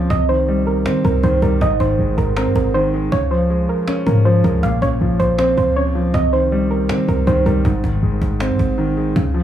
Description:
hip hop, trap; 159 BPM; 4/4; half-time; A4 = 440 Hz
dark concert grand piano; accompaniment; 0.0-9.4 s; Ab2 to Db4; -19 LUFS; left 1 dB; low-pass filter
clean 808-style bass; bass; 0.0-9.4 s; Ab1 to Eb3; -19 LUFS; equal
cajon; drums; 0.0-9.2 s; -26 LUFS; right 1 dB
soft round pluck; melody; 0.1-7.6 s; Bb4 to F5; -20 LUFS; right 2 dB; chorus, low-pass filter, tape echo
small room ambience; studio ambience; -14 LUFS; side -10 dB against mid
0.0-9.4 A section
0.1 Cm7; 1.6 Ab; 3.1 Db6; 4.6 Bbmadd9; 6.1 Cm7; 7.7 Ab

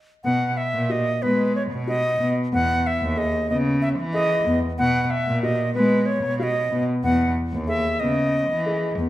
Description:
contemporary instrumental, chamber music in an uneven meter; 186 BPM (eighths); 7/8; straight; B major; A4 = 442 Hz
bright reedy wooden flute; melody; 0.2-9.0 s; B4 to F#5; -23 LUFS; equal
felt-muted upright piano; arpeggios; 0.2-9.1 s; B3 to G#4; -26 LUFS; left 2 dB
rich cello; bass; 0.2-9.1 s; D#2 to G#3; -24 LUFS; right 1 dB
wet recital hall reverb, RT60 1.5 s; -20 LUFS; side -14 dB against mid
0.3-9.1 A section
stop 0.0
0.3 B5; 2.5 Emaj7; 4.8 B5; 7.0 Emaj7

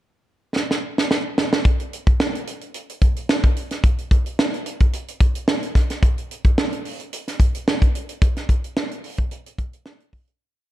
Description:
pop; 110 BPM; 4/4; swing 54% on 16ths
tight funk drum kit; drums; 0.6-10.4 s; hi-hat, kick drum, snare drum; -18 LUFS; equal
light reverb; dark, warm production; -18 LUFS; side -15 dB against mid
0.0-1.7 pickup bar; 1.7-10.4 verse
drum fill 0.6-1.7; fade-out 8.2-10.4

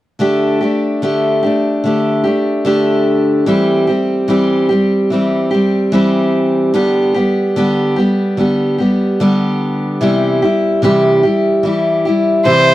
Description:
folk; 73 BPM; 4/4; straight; A4 = 440 Hz
picked steel-string acoustic guitar; accompaniment; 0.2-12.7 s; C3 to G4; -12 LUFS; equal
warm fiddle; melody; 12.5-12.7 s; C5; -9 LUFS; right 2 dB
moderate booth ambience, RT60 0.2 s; dry, close 1970s-style studio recording; -12 LUFS; side -15 dB against mid
0.2-12.7 A section
0.2 Dsus4; 3.5 C/E; 6.7 G/D; 10.0 C

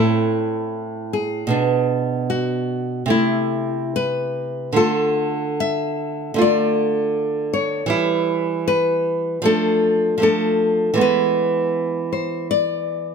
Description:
romantic duo for nylon-string guitar and classical guitar; 76 BPM; 4/4; uneven beats, rubato; A minor; A4 = 444 Hz
nylon-string guitar; melody; 0.0-13.1 s; E4 to E5; -21 LUFS; left 4 dB; plate reverb
nylon-string guitar; accompaniment; 0.0-13.1 s; A2 to F4; -20 LUFS; right 4 dB
moderate studio reverb, RT60 0.6 s; -18 LUFS; side -6 dB against mid
0.0-13.1 A section
0.0 Am; 1.5 G#dim/B; 3.1 Am/C; 4.8 Dm; 7.9 C#dim/E; 9.5 Dm/F; 11.0 E

